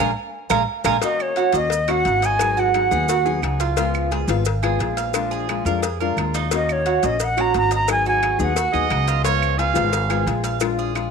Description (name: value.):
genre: latin, Cuban son and guajira.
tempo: 175 BPM.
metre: 4/4.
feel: straight.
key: Eb minor.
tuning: A4 = 435 Hz.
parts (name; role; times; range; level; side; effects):
nylon-string guitar; accompaniment; 0.0-11.1 s; Db3 to Ab4; -26 LUFS; left 12 dB; none.
Cuban tres; arpeggios; 0.0-11.1 s; Eb4 to Bb5; -24 LUFS; right 11 dB; none.
upright bass; bass; 0.0-11.1 s; Ab1 to F2; -24 LUFS; equal; none.
claves; percussion; 0.0-11.1 s; none; -31 LUFS; right 13 dB; none.
cowbell; percussion; 0.5-11.1 s; none; -29 LUFS; left 13 dB; none.
maracas; percussion; 0.5-11.1 s; none; -34 LUFS; right 13 dB; none.
silver concert flute; melody; 1.0-3.6, 6.6-9.1 s; Db5 to Bb5; -21 LUFS; equal; none.
bright trumpet; second line; 8.7-10.3 s; Db5 to F5; -22 LUFS; right 14 dB; none.
room: moderate echo chamber reverb, RT60 1.6 s, small room ambience.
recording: 1960s-style stereo with parts hard left and right.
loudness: -18 LUFS.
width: side -6 dB against mid.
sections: 0.0-1.0 A section; 1.0-11.1 B section.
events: drum fill 0.0-1.0; band accent 0.0-1.0; Cuban tres solo 0.0-1.0.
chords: 0.0 Bb7; 1.0 Ebm7; 2.4 Abm7; 3.8 Db7; 5.1 Bb7; 6.5 Ebm7; 7.9 Abm7; 9.2 Db7.